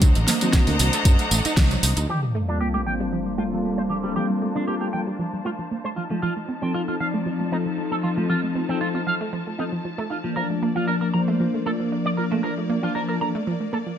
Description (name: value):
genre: nu-disco, nu disco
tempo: 116 BPM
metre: 4/4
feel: straight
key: G minor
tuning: A4 = 440 Hz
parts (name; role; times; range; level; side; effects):
- muted studio string section; sustained chords; 0.0-14.0 s; F3 to Bb5; -31 LUFS; left 1 dB; sidechain pumping, low-pass filter
- analog pluck; arpeggios; 0.0-14.0 s; F3 to Eb4; -29 LUFS; right 3 dB; chorus, sidechain pumping, tape echo
- modern bright fingered electric bass; bass; 0.0-2.0 s; A1 to F#2; -23 LUFS; equal; none
- electronic kick drum; drums; 0.0-1.7 s; none; -17 LUFS; equal; overdrive
- pop drum kit; drums; 0.0-2.1 s; hi-hat, snare drum, tambourine; -24 LUFS; right 1 dB; overdrive, low-pass filter on hats, low-pass filter on perc, low-pass filter on snare, low-pass filter on room
- mellow synth brass; accompaniment; 0.4-13.3 s; Eb3 to A5; -26 LUFS; left 2 dB; chorus, vintage 12-bit sampler grit, sidechain pumping, ping-pong delay
- electric guitar with an envelope filter; riff; 2.1-13.8 s; F3 to Bb5; -29 LUFS; right 2 dB; wide subtle chorus, low-pass filter, ping-pong delay
- sub drop; sound effects; 2.1-4.2 s; none; -29 LUFS; equal; none
room: moderate echo chamber reverb, RT60 1.3 s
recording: none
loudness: -21 LUFS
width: side -9 dB against mid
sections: 0.0-2.1 A section; 2.1-14.0 B section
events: band accent 1.6; impact 2.1-4.2; filter sweep on string section 2.1-14.0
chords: 0.0 D7b9b13; 2.1 Gm11; 6.0 F7; 10.4 Bbmaj7